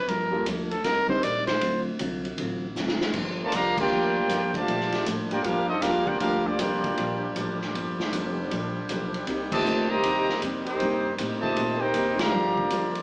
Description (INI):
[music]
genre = jazz, big band swing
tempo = 157 BPM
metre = 4/4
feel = swing 65% on 8ths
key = G minor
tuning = A4 = 443 Hz
[part]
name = breathy trumpet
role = melody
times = 0.0-1.8 s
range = A4 to D5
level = -25 LUFS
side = equal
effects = none
[part]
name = upright bass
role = bass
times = 0.0-13.0 s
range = E#1 to Bb2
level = -35 LUFS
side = equal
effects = none
[part]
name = vintage hollow-body jazz guitar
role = accompaniment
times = 0.1-13.0 s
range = G2 to G4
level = -32 LUFS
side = equal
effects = none
[part]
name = swinging big-band drum kit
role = drums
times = 0.1-13.0 s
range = crash cymbal, hi-hat, kick drum, ride cymbal, snare drum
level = -32 LUFS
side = equal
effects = none
[part]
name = dark concert grand piano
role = accompaniment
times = 0.3-1.2 s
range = G3 to Bb4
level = -30 LUFS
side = equal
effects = none
[part]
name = muted trombone section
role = sustained chords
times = 3.2-13.0 s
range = F3 to D5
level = -35 LUFS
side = equal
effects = none
[part]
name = clear trumpet section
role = melody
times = 3.4-13.0 s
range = Bb3 to Bb5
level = -26 LUFS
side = equal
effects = none
[part]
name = mellow trombone section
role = second line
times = 3.4-12.9 s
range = Bb2 to G4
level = -29 LUFS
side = right 1 dB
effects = none
[sound]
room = wet large studio reverb, RT60 0.9 s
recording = heard from further back in the room, small speaker sound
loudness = -23 LUFS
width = side -26 dB against mid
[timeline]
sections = 0.0-3.1 A section; 3.1-13.0 B section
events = trumpet solo 0.0-3.1; drum fill 2.8-3.1; band accent 3.7, 9.5, 12.1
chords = 0.1 Gm7; 0.8 Cm7; 1.6 D7#9; 3.1 Gm7; 9.3 Cm7; 12.3 Gm7